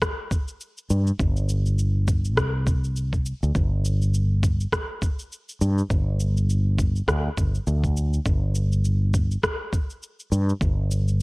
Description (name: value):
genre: organic downtempo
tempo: 102 BPM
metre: 4/4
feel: swing 57% on 16ths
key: unclear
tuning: A4 = 440 Hz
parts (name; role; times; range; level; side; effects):
- electronic kick drum; drums; 0.0-10.7 s; none; -24 LUFS; equal; none
- electronic rim click and shaker; drums; 0.0-11.2 s; none; -28 LUFS; equal; none
- fretless electric bass; bass; 0.9-11.2 s; G1 to G2; -21 LUFS; equal; none
room: little or no reverb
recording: worn, warbling old tape, cassette tape, warbly pitch drift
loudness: -21 LUFS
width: side -26 dB against mid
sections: 0.0-11.2 A section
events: none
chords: none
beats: 0.02 0.61 | 1.20 1.78 2.37 2.96 | 3.55 4.14 4.73 5.31 | 5.90 6.49 7.08 7.67 | 8.26 8.84 9.43 10.02 | 10.61 11.20